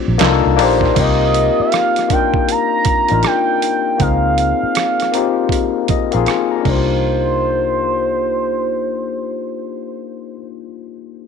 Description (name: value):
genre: R&B, neo-soul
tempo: 79 BPM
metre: 4/4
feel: swing 64% on 16ths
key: C minor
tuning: A4 = 441 Hz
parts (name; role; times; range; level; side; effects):
- gliding portamento lead; melody; 0.0-10.5 s; C5 to Bb5; -18 LUFS; right 4 dB; chorus
- overdriven tine electric piano; accompaniment; 0.0-11.3 s; Bb3 to Bb5; -18 LUFS; left 12 dB; lush chorus
- vintage muted fingered electric bass; bass; 0.1-10.5 s; A1 to Db2; -19 LUFS; right 1 dB; none
- dusty soul sampler-style drum kit; drums; 0.2-6.9 s; crash cymbal, handclaps, hi-hat, kick drum, ride cymbal, rim click, snare drum; -20 LUFS; right 5 dB; none
room: light reverb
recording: 1960s-style stereo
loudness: -13 LUFS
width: side -6 dB against mid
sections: 1.0-7.0 A section; 7.0-10.1 B section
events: tine electric piano fill 5.5-7.0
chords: 0.2 Cm11; 1.0 Cm9; 4.0 Db69; 6.7 Cm9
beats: 0.20 | 0.96 1.72 2.48 3.24 | 4.00 4.76 5.52 6.28 | 7.04 7.79 8.55 9.31